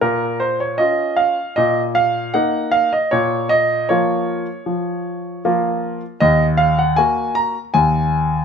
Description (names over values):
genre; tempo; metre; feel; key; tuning
classical-period piano sonatina; 78 BPM; 4/4; straight; Bb minor; A4 = 440 Hz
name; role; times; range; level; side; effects
clear grand piano; solo; 0.0-8.4 s; Eb2 to Bb5; -16 LUFS; equal; none
room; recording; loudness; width
moderate large studio reverb, RT60 1.2 s; minimal, uncompressed stereo recording; -15 LUFS; side -6 dB against mid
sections
0.0-8.4 A section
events
none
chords
0.0 Bbm; 1.6 Eb5/Bb; 3.1 Bbm; 6.2 Ebm; 7.7 N.C.